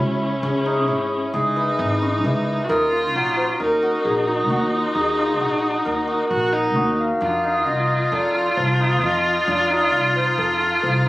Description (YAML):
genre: contemporary instrumental, chamber music in an uneven meter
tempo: 133 BPM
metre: 5/4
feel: straight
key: unclear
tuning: A4 = 438 Hz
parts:
  - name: breathy clarinet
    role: melody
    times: 0.0-11.1 s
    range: Fb4 to F5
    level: -24 LUFS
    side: left 1 dB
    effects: none
  - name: rich viola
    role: second line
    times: 0.0-11.1 s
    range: Db4 to Gb4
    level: -22 LUFS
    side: equal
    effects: none
  - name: hammered dulcimer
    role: arpeggios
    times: 0.0-11.1 s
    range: Fb3 to Bb4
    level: -23 LUFS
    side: equal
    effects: none
  - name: upright bass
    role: bass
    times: 0.0-11.1 s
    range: Ab1 to F2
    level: -26 LUFS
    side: equal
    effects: none
room: light reverb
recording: recorded on a phone in the room, studio reverb, compression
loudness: -18 LUFS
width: side -18 dB against mid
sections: 0.0-11.1 A section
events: none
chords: 0.0 Dbmadd9; 2.7 Ebm; 7.2 F